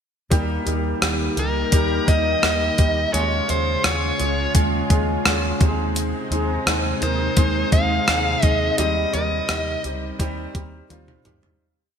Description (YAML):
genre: 1980s-style pop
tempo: 85 BPM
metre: 4/4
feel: straight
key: Eb mixolydian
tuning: A4 = 445 Hz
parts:
  - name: warm concert grand piano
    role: accompaniment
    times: 0.3-11.6 s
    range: G3 to Bb4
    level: -25 LUFS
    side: equal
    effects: wide subtle chorus
  - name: string machine, full ensemble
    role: sustained chords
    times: 0.3-11.6 s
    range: C3 to G4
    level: -29 LUFS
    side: left 1 dB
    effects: ensemble chorus
  - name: vintage muted fingered electric bass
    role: bass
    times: 0.3-11.5 s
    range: Db2 to Eb2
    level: -26 LUFS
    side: equal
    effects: none
  - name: clean 12-bit digital drum machine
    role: drums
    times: 0.3-11.6 s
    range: hi-hat, kick drum, rim click, toms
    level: -20 LUFS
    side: equal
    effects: gated reverb
  - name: bluesy overdriven lead guitar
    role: melody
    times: 1.4-9.8 s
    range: Bb4 to F5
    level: -23 LUFS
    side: equal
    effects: distortion, ping-pong delay
room: moderate lush hall reverb, RT60 2.2 s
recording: bright 1980s-style digital production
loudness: -18 LUFS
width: side -7 dB against mid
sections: 0.3-11.6 verse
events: fade-out 8.8-11.6; drum fill 10.9-11.6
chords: 0.3 Eb; 3.1 Db; 5.6 Ab; 8.8 Cm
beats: | 0.32 1.02 1.73 2.43 | 3.14 3.85 4.55 5.26 | 5.96 6.67 7.38 8.08 | 8.79 9.49 10.20 10.90